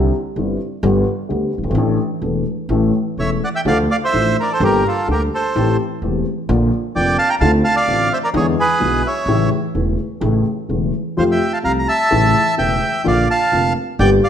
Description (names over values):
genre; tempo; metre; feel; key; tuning
tango; 128 BPM; 4/4; rubato; D minor from 3.7 s; A4 = 440 Hz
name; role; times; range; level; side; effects
dark upright piano; accompaniment; 0.0-14.2 s; E1 to A4; -18 LUFS; left 2 dB; none
upright bass; bass; 0.0-14.2 s; E1 to F2; -21 LUFS; right 2 dB; none
bandoneon; melody; 3.2-14.3 s; F4 to Bb5; -17 LUFS; right 2 dB; none
room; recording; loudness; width
wet large studio reverb, RT60 1.2 s; none; -15 LUFS; side -9 dB against mid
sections
0.0-3.7 A section; 3.7-14.3 B section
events
none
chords
0.0 Cadd9; 0.8 G; 1.8 Asus4; 2.7 A; 3.7 Dm; 4.6 Gmadd9; 5.5 Am7; 6.5 Bb; 7.4 Dm7; 8.3 E7; 9.3 A; 11.2 F; 12.1 A; 13.1 Bb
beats
0.36 0.83 1.29 | 1.76 2.23 2.70 3.18 | 3.66 4.14 4.61 5.08 | 5.55 6.02 6.49 6.95 | 7.42 7.88 8.35 8.81 | 9.28 9.75 10.22 10.70 | 11.18 11.65 12.12 12.59 | 13.06 13.52 13.98